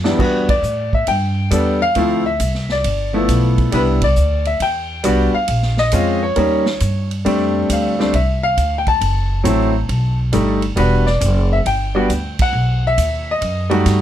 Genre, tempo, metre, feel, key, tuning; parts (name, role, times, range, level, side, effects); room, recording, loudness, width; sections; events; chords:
jazz piano trio; 136 BPM; 4/4; swing 67% on 8ths; E minor; A4 = 438 Hz
clear baby grand piano; melody; 0.0-14.0 s; E2 to A5; -17 LUFS; left 1 dB
upright bass; bass; 0.0-14.0 s; E1 to A2; -18 LUFS; equal
vintage drum kit; drums; 0.0-14.0 s; crash cymbal, hi-hat, kick drum, ride cymbal, snare drum; -25 LUFS; right 2 dB
little or no reverb; -14 LUFS; side -11 dB against mid
0.2-14.0 A section
drum fill 0.0; band accent 0.4, 3.9, 12.3
0.2 Em7; 2.0 Dm9; 2.8 G13; 3.7 Cmaj7; 5.5 A#m7; 6.4 D#7; 7.3 F6; 9.0 F#m7b5; 9.9 B7b13; 10.8 Em7; 12.5 B7b13